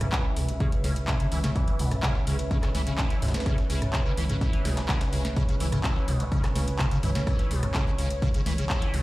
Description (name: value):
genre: acid house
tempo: 126 BPM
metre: 4/4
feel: straight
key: C# minor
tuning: A4 = 438 Hz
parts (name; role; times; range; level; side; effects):
- warm analog pad; sustained chords; 0.0-9.0 s; C#4 to E5; -35 LUFS; right 1 dB; chorus, sidechain pumping
- liquid acid bass; riff; 0.0-9.0 s; B2 to C#4; -30 LUFS; equal; phaser, ensemble chorus, cassette tape, sidechain pumping, dub echo
- round analog bass; bass; 0.0-9.0 s; C#2; -28 LUFS; equal; sidechain pumping
- booming analog drum machine; drums; 0.0-9.0 s; handclaps, hi-hat, rim click, snare drum, toms; -32 LUFS; equal; none
- dusty soul sampler-style drum kit; drums; 0.1-9.0 s; hi-hat, snare drum; -43 LUFS; equal; none
- electronic kick drum; drums; 0.1-8.8 s; none; -27 LUFS; equal; none
room: light reverb, digital ambience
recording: played on a big sound system in a bare room, large studio reverb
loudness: -24 LUFS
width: side -18 dB against mid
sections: 0.0-9.0 A section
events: none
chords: 0.0 C#m7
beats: 0.13 0.60 1.08 | 1.56 2.03 2.51 2.98 | 3.46 3.94 4.41 4.89 | 5.37 5.84 6.32 6.79 | 7.27 7.75 8.22 8.70